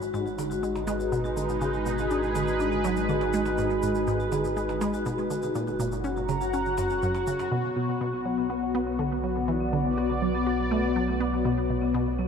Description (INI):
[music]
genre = ambient, sequencer-driven space music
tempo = 122 BPM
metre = 4/4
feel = straight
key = B minor from 7.5 s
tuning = A4 = 440 Hz
[part]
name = sweeping resonant pad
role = sustained chords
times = 0.0-12.3 s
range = G#3 to B5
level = -29 LUFS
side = equal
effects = chorus
[part]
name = resonant blip pluck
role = riff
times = 0.0-12.3 s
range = F#2 to F#4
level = -30 LUFS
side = right 2 dB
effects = chorus, analog delay
[part]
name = round analog bass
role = bass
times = 0.0-12.3 s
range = F#1 to B1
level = -34 LUFS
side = equal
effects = none
[part]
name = shaker and percussion blips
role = percussion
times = 0.0-7.5 s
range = none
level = -44 LUFS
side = right 1 dB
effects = overdrive, analog delay
[part]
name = vibraphone with soft mallets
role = arpeggios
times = 0.1-12.3 s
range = B3 to F#4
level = -30 LUFS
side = moving between left 7 dB and equal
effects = auto-pan, low-pass filter, analog delay
[sound]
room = wet huge ambient reverb, RT60 7.3 s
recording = dark, warm production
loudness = -24 LUFS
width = side -6 dB against mid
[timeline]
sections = 0.0-7.5 A section; 7.5-12.3 B section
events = filter sweep on vibraphone 7.5-12.3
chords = 0.0 G#dim; 5.5 F#; 7.5 Bm